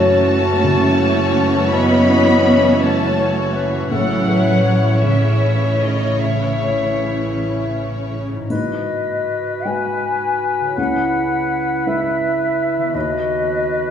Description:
cinematic, emotional film score for orchestra; 51-56 BPM (dotted quarters); 6/8; rubato; A4 = 440 Hz
clear studio violin section; melody; 0.0-7.3 s; C#5 to B5; -24 LUFS; left 3 dB
clear clarinet; second line; 0.0-13.9 s; E4 to E5; -24 LUFS; right 2 dB
clear studio violin section; second line; 0.0-8.3 s; E4 to C#5; -25 LUFS; left 4 dB
dark baby grand piano; accompaniment; 0.0-13.9 s; C#2 to B4; -26 LUFS; left 1 dB
rich studio viola section; accompaniment; 0.0-8.3 s; C#3 to C#4; -23 LUFS; right 4 dB
warm French horn section; sustained chords; 0.0-8.1 s; C#3 to C#4; -24 LUFS; left 1 dB
concert harp; arpeggios; 0.0-13.9 s; F#2 to C#5; -24 LUFS; left 5 dB
clear studio cello section; bass; 0.0-7.3 s; C#3 to B3; -22 LUFS; right 2 dB
rich studio double bass section; bass; 0.0-8.3 s; F#1 to A1; -21 LUFS; right 2 dB
clear oboe; second line; 8.5-13.9 s; B4; -26 LUFS; left 3 dB
mellow hollow silver concert flute; second line; 8.5-13.9 s; D#5 to G#5; -20 LUFS; left 3 dB
triangle; percussion; 8.5-10.0 s; -53 LUFS; left 2 dB
wet scoring stage reverb, RT60 1.8 s; studio reverb; -15 LUFS; side -8 dB against mid
0.0-8.5 A section; 8.5-13.9 B section
0.0 F#m7; 3.9 A; 8.5 G#m7; 10.8 C#m7; 12.9 B/D#
0.64 | 1.73 2.82 | 3.92 5.04 | 6.19 7.34 | 8.50 9.66 | 10.78 11.87 | 12.95

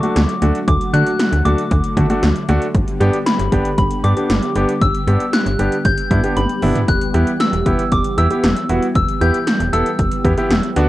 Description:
synth-pop; 116 BPM; 4/4; straight; A4 = 441 Hz
soft synth bell; melody; 0.0-10.7 s; B5 to G6; -22 LUFS; left 2 dB; chorus, phaser, cassette tape, tape echo
clear concert grand piano; accompaniment; 0.0-10.9 s; A3 to A4; -20 LUFS; right 1 dB
lush unison pad; sustained chords; 0.0-10.9 s; D3 to G4; -23 LUFS; equal; chorus
80s electronic pad drums; drums; 0.0-10.9 s; hi-hat, kick drum, snare drum, toms; -19 LUFS; equal; gated reverb on snare and toms, overdrive
slap-like FM bass; bass; 0.2-10.9 s; E1 to D3; -17 LUFS; equal
light reverb; home recording on cassette; -14 LUFS; side -16 dB against mid
0.0-10.9 A section
drum fill 6.4-6.9
0.0 D; 2.7 G; 6.9 Em
0.16 | 0.68 1.20 1.71 2.23 | 2.75 3.26 3.78 4.30 | 4.82 5.33 5.85 6.37 | 6.88 7.40 7.92 8.44 | 8.95 9.47 9.99 10.51

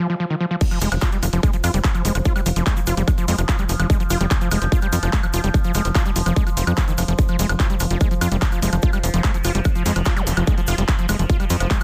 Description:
psychedelic trance; 146 BPM; 4/4; straight; F minor; A4 = 440 Hz
overdriven acid bass; riff; 0.0-11.8 s; Eb3 to F4; -27 LUFS; equal; distortion, sidechain pumping, tape echo
overtone-sweeping drone; sustained chords; 1.2-11.8 s; F3; -33 LUFS; equal; chorus, built-in reverb, sidechain pumping
electronic kick drum; drums; 0.6-11.8 s; -22 LUFS; equal; small room reverb
techno drum kit; drums; 0.6-11.8 s; crash cymbal, handclaps, hi-hat, woodblock; -29 LUFS; equal; overdrive, small room reverb
egg shaker; percussion; 0.6-11.8 s; -38 LUFS; equal
tight sequencer bass; bass; 0.8-11.7 s; F1 to F2; -23 LUFS; equal
zap; sound effects; 10.2-10.3 s; -34 LUFS; equal
little or no reverb; dense, heavily limited modern master; -20 LUFS; mono
0.6-11.8 A section
break 0.0-0.6; drop 0.6-11.8
0.0 F5
0.20 | 0.61 1.02 1.43 1.84 | 2.25 2.67 3.08 3.49 | 3.90 4.31 4.72 5.13 | 5.54 5.95 6.36 6.78 | 7.19 7.60 8.01 8.42 | 8.83 9.24 9.65 10.06 | 10.47 10.88 11.29 11.71

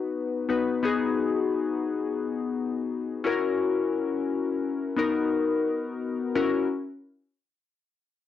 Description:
pop; 87 BPM; 4/4; straight; F# mixolydian; A4 = 441 Hz
glassy digital keys; solo; 0.0-6.7 s; B3 to B4; -25 LUFS; left 4 dB; chorus
wet studio reverb, RT60 0.5 s; home recording on cassette, nothing above 10.6 kHz; -25 LUFS; side -11 dB against mid
0.0-6.4 A section; 6.4-8.3 B section
0.0 B; 0.8 G#m7; 3.2 F#7; 5.0 Bmaj7; 6.4 F#7
0.15 | 0.84 1.53 2.22 2.90 | 3.60 4.29 4.97 5.66 | 6.35

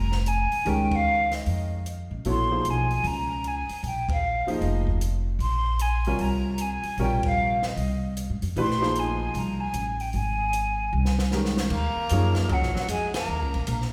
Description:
modal jazz; 152 BPM; 4/4; swing 64% on 8ths; A4 = 440 Hz
breathy mellow jazz flute; melody; 0.0-13.9 s; Eb5 to C6; -30 LUFS; equal
clear upright piano; accompaniment; 0.0-12.7 s; C3 to Db5; -32 LUFS; equal
upright bass; bass; 0.0-13.9 s; F1 to Ab2; -29 LUFS; equal
compact cocktail drum kit; drums; 0.1-13.9 s; crash cymbal, hi-hat, kick drum, ride cymbal, snare drum; -37 LUFS; equal
breathy tenor saxophone; second line; 11.7-13.9 s; Gb3 to Bb3; -35 LUFS; equal
wet scoring stage reverb, RT60 1.6 s; recorded in a church or concert hall; -26 LUFS; mono
0.0-11.7 A section; 11.7-13.9 B section
band accent 0.9, 4.0, 7.2, 13.1; drum fill 10.9-11.7
0.0 Bbm11; 5.4 Fm/Bb; 11.7 Ebm11
0.26 | 0.65 1.05 1.45 1.84 | 2.24 2.63 3.03 3.42 | 3.82 4.21 4.61 5.00 | 5.40 5.79 6.19 6.58 | 6.98 7.37 7.77 8.16 | 8.55 8.95 9.34 9.74 | 10.13 10.53 10.92 11.32 | 11.71 12.11 12.50 12.90 | 13.29 13.69

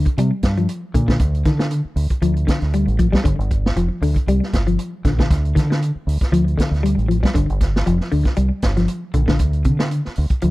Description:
afrobeat; 117 BPM; 4/4; swing 54% on 16ths; G minor; A4 = 439 Hz
semi-hollow electric guitar; arpeggios; 0.0-10.5 s; C3 to G3; -21 LUFS; left 2 dB; analog chorus, slapback echo
deep dub fingered electric bass; bass; 0.0-10.5 s; F1 to D3; -19 LUFS; equal
vintage drum kit; drums; 0.1-10.5 s; hi-hat, kick drum, snare drum; -20 LUFS; equal
little or no reverb; dry, close 1970s-style studio recording; -16 LUFS; side -19 dB against mid
0.0-10.5 A section
0.0 Gm7; 1.2 N.C.; 3.3 G7(no3); 5.3 N.C.; 7.4 G7(no3); 9.4 N.C.
0.18 0.69 | 1.21 1.72 2.23 2.74 | 3.26 3.77 4.28 4.79 | 5.30 5.82 6.33 6.84 | 7.35 7.87 8.38 8.89 | 9.40 9.91 10.43

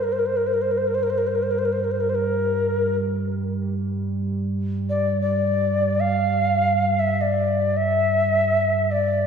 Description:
world meditative, free-time meditation music; free time; G dorian; A4 = 440 Hz
mellow reedy Native American-style cedar flute; melody; 0.0-9.3 s; Bb4 to F5; -20 LUFS; left 1 dB; ping-pong delay
deep rumbling drone; drone; 0.0-9.3 s; G2 to G3; -25 LUFS; right 2 dB; built-in reverb
wet plate reverb, RT60 2.2 s; dreamy mix soaked in reverb; -20 LUFS; side -7 dB against mid
0.0-9.3 A section
free time

